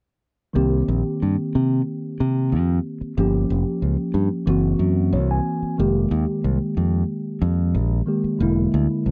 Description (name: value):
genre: jazz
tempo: 92 BPM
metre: 4/4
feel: straight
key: C minor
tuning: A4 = 440 Hz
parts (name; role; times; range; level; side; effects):
- tine electric piano; accompaniment; 0.5-9.1 s; D3 to Ab5; -25 LUFS; equal; phaser
- modern bright fingered electric bass; bass; 0.6-9.1 s; E1 to C3; -22 LUFS; equal; none
room: little or no reverb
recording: dry, close 1970s-style studio recording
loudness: -21 LUFS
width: mono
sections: 0.6-9.1 A section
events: tine electric piano fill 4.8-5.8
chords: 0.6 Cm7; 3.2 Gm7b5; 4.5 F#7#11; 5.8 Fm11; 8.4 E7#11